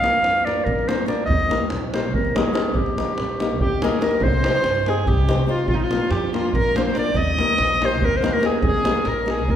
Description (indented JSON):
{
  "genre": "balkan folk, Balkan wedding band",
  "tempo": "286 BPM (eighths)",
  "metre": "7/8",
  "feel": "straight",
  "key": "Eb major",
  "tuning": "A4 = 444 Hz",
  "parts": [
    { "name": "warm clarinet", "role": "melody", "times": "0.0-9.6 s", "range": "Eb4 to F5", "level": "-22 LUFS", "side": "equal", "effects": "none" },
    { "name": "flamenco guitar", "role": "accompaniment", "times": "0.0-9.4 s", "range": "Bb3 to C5", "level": "-25 LUFS", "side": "left 3 dB", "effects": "none" },
    { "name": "upright bass", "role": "bass", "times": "0.0-9.6 s", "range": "Bb1 to G2", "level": "-26 LUFS", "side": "equal", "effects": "none" },
    { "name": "davul", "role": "percussion", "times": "0.0-9.6 s", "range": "none", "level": "-24 LUFS", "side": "right 1 dB", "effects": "none" },
    { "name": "warm violin", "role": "second line", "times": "3.6-9.6 s", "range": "Eb4 to Eb5", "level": "-26 LUFS", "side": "right 1 dB", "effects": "none" }
  ],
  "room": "wet recital hall reverb, RT60 1.4 s",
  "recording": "recorded in a church or concert hall",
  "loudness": "-18 LUFS",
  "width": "side -10 dB against mid",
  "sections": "0.0-4.2 A section; 4.2-9.6 A section",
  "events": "none",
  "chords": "0.0 Bb; 1.3 Eb; 4.2 Cm; 5.7 Bb; 7.1 Eb"
}